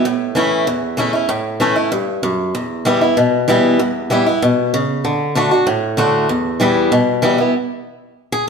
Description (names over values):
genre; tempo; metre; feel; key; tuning
bluegrass; 192 BPM; 4/4; straight; E dorian; A4 = 440 Hz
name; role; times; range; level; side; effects
picked swing-style acoustic guitar; solo; 0.0-8.5 s; E2 to G#4; -14 LUFS; equal; none
room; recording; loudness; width
wet stone room reverb, RT60 1.4 s; band playing live in one room; -14 LUFS; side -5 dB against mid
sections
0.0-7.5 A section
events
none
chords
0.0 A; 2.5 Em; 5.0 D; 6.3 Em; 7.5 N.C.